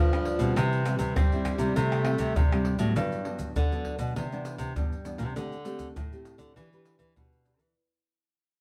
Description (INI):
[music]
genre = samba and choro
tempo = 100 BPM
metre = 4/4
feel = straight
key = G major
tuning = A4 = 439 Hz
[part]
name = breathy tenor saxophone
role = second line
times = 0.0-3.0 s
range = E3 to A3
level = -34 LUFS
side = equal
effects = none
[part]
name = nylon-string guitar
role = accompaniment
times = 0.0-7.7 s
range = G2 to B4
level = -36 LUFS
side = equal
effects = none
[part]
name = nylon-string guitar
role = bass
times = 0.0-7.7 s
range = G2 to C4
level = -32 LUFS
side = equal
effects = none
[part]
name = maracas, pandeiro, tamborim and surdo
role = percussion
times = 0.1-7.8 s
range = none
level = -31 LUFS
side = equal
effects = none
[sound]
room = moderate studio reverb, RT60 0.8 s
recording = band playing live in one room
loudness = -28 LUFS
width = mono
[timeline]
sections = 0.0-3.0 A section; 3.0-7.8 B section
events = fade-out 3.0-7.8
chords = 0.0 G7; 0.6 C; 3.0 Gmaj7; 4.2 Cmaj9; 5.4 D7sus4; 6.6 Em7